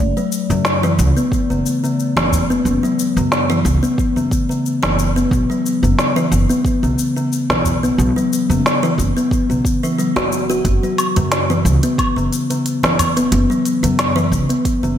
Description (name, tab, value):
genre	organic downtempo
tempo	90 BPM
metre	4/4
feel	swing 54% on 16ths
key	F# minor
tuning	A4 = 442 Hz
part	upright bass	bass	0.0-14.9 s	F#1 to F#2	-19 LUFS	equal	none
part	bronze singing bowl	texture	0.0-15.0 s	A3	-29 LUFS	left 2 dB	stereo widening
part	kalimba	arpeggios	0.2-15.0 s	C#3 to F#4	-17 LUFS	left 1 dB	tape echo
part	organic electronic drum kit	drums	0.2-15.0 s	hi-hat, shaker, snare drum, woodblock	-21 LUFS	equal	overdrive
part	udu	percussion	0.5-14.0 s	none	-22 LUFS	right 1 dB	none
part	electronic kick drum	drums	1.3-14.8 s	none	-20 LUFS	equal	none
room	wet concert hall reverb, RT60 2.2 s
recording	big arena sound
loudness	-14 LUFS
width	side -10 dB against mid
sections	0.0-15.0 A section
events	none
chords	0.0 F#m7